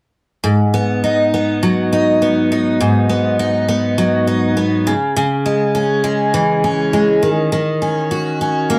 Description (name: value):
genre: indie pop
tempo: 102 BPM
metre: 4/4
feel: straight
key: G# minor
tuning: A4 = 440 Hz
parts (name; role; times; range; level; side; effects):
- picked steel-string acoustic guitar; accompaniment; 0.4-8.8 s; G#2 to F#4; -16 LUFS; equal; subtle chorus, vibrato effect
room: moderate studio reverb, RT60 0.5 s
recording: none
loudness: -16 LUFS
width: mono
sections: 0.4-8.8 A section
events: none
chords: 0.4 G#m7; 4.9 C#m; 7.2 D#m7